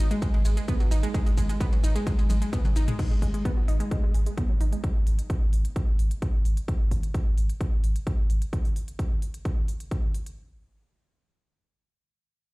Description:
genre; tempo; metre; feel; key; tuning
driving peak-time techno; 130 BPM; 4/4; straight; G# minor; A4 = 441 Hz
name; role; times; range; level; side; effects
wide unison pluck; riff; 0.0-4.8 s; F#3 to D#4; -32 LUFS; moving between left 2 dB and right 5 dB; overdrive, auto-pan, sidechain pumping, ping-pong delay
saturated sub bass; bass; 0.0-8.4 s; G#1; -26 LUFS; equal; sidechain pumping, low-pass filter
techno drum kit; drums; 0.1-10.4 s; crash cymbal, hi-hat, ride cymbal, shaker, toms; -39 LUFS; equal; sidechain pumping on hats, small room reverb, sidechain pumping on cymbals, sidechain pumping on perc, sidechain pumping on toms
electronic kick drum; drums; 0.2-10.0 s; none; -26 LUFS; equal; small room reverb
room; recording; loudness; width
little or no reverb; played on a big sound system in a bare room, large studio reverb; -23 LUFS; side -22 dB against mid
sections
0.0-3.0 A section; 3.0-10.4 B section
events
drop 0.0-3.0; drum fill 2.3-3.0; filter sweep on synth arpeggio sound 3.0-4.8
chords
0.0 G#5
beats
0.22 0.68 | 1.14 1.61 2.07 2.53 | 2.99 3.45 3.91 4.38 | 4.84 5.30 5.76 6.22 | 6.68 7.14 7.61 8.07 | 8.53 8.99 9.45 9.91

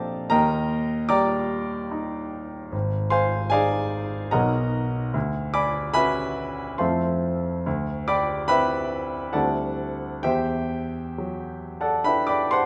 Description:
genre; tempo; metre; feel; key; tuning
classical, impressionist solo piano; 64-77 BPM; 3/4; rubato; unclear; A4 = 438 Hz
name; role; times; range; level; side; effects
clear grand piano; solo; 0.0-12.7 s; Ab1 to D6; -25 LUFS; equal; none
room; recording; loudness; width
moderate recital hall reverb, RT60 1.6 s; none; -25 LUFS; mono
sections
0.0-12.7 A section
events
none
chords
0.3 Ebmaj7; 2.7 Ab; 4.3 Bmaj7; 5.2 Dmaj7; 6.8 Fmaj7; 7.7 Dsus2; 9.4 D9sus4; 10.3 Em9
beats
| 0.31 1.11 1.92 | 2.74 3.54 4.35 | 5.15 5.96 6.81 | 7.66 8.51 9.35 | 10.25 11.17 12.06

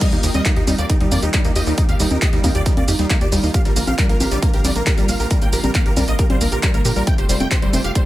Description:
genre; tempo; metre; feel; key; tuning
uplifting trance; 136 BPM; 4/4; straight; unclear; A4 = 439 Hz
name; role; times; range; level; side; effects
dense compressed supersaw; melody; 0.0-8.0 s; Eb4 to G5; -26 LUFS; right 1 dB; sidechain pumping, digital delay
lush unison pad; sustained chords; 0.0-8.1 s; C3 to Bb4; -28 LUFS; right 1 dB; chorus, sidechain pumping
wide unison pluck; arpeggios; 0.0-8.1 s; G3 to G4; -25 LUFS; left 1 dB; sidechain pumping, digital delay
electronic kick drum; drums; 0.0-8.0 s; none; -18 LUFS; equal; none
punchy analog drum machine; drums; 0.0-8.0 s; congas, crash cymbal, handclaps, hi-hat, shaker; -22 LUFS; equal; none
tight sequencer bass; bass; 0.1-7.9 s; F1 to Bb2; -21 LUFS; equal; sidechain pumping
room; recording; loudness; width
digital ambience; none; -15 LUFS; side -15 dB against mid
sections
0.0-8.1 A section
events
drop 0.0-8.1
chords
0.0 Ebadd9; 3.5 Bb; 7.1 Fadd9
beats
| 0.01 0.46 0.90 1.34 | 1.78 2.22 2.66 3.10 | 3.54 3.98 4.42 4.87 | 5.31 5.75 6.19 6.63 | 7.07 7.51 7.96

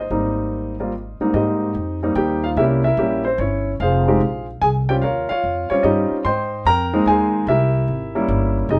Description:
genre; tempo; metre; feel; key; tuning
jazz piano trio; 147 BPM; 3/4; swing 67% on 8ths; Ab major; A4 = 440 Hz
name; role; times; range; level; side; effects
warm grand piano; melody; 0.0-8.8 s; Ab2 to C6; -21 LUFS; equal; none
upright bass; bass; 0.0-8.8 s; F1 to Ab2; -25 LUFS; equal; none
room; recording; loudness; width
moderate studio reverb, RT60 0.8 s; none; -19 LUFS; mono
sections
0.0-1.3 A section; 1.3-8.8 B section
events
none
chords
0.0 Abmaj9; 1.3 Abmaj7; 2.6 C7b9; 3.8 Fm; 5.0 Eb13; 6.2 Abmaj7; 7.5 C7b9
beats
| 0.10 0.51 0.92 | 1.33 1.75 2.15 | 2.56 2.97 3.38 | 3.79 4.20 4.61 | 5.02 5.43 5.84 | 6.25 6.66 7.06 | 7.47 7.88 8.29 | 8.70

